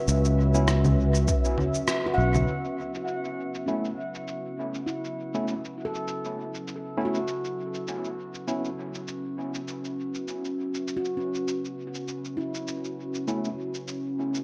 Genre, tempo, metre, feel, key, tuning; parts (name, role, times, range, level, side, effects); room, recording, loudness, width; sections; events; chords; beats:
ambient dub; 100 BPM; 4/4; swing 56% on 16ths; A4 = 435 Hz
deep dark ambient pad; sustained chords; 0.0-14.4 s; C#4 to E5; -34 LUFS; equal; chorus, built-in reverb
fingered electric bass; bass; 0.1-2.4 s; B1 to C#2; -24 LUFS; equal; tube saturation
electronic cabasa, rim click and congas; drums; 0.1-14.4 s; -34 LUFS; equal; low-pass filter on perc, small room ambience, low-pass filter on snare, dub echo
tine electric piano; stabs; 0.5-8.7, 13.3-13.5 s; A3 to E4; -36 LUFS; equal; overdrive, dub echo
electronic kick drum; drums; 1.3-1.4 s; -28 LUFS; equal; overdrive, small room ambience
handpan; arpeggios; 2.1-14.4 s; C#4 to F#5; -36 LUFS; equal; low-pass filter, dub echo
moderate spring reverb, RT60 1.9 s; -29 LUFS; mono
0.0-2.5 A section; 2.5-14.4 B section
band accent 1.9; filter sweep on handpan 2.5-14.4
0.0 C#m7; 2.5 B9sus4; 7.3 C#m7; 12.1 Bsus4
| 0.08 0.68 1.28 1.88 | 2.48 3.08 3.68 4.28 | 4.88 5.48 6.08 6.68 | 7.28 7.88 8.48 9.08 | 9.68 10.28 10.88 11.48 | 12.08 12.68 13.28 13.88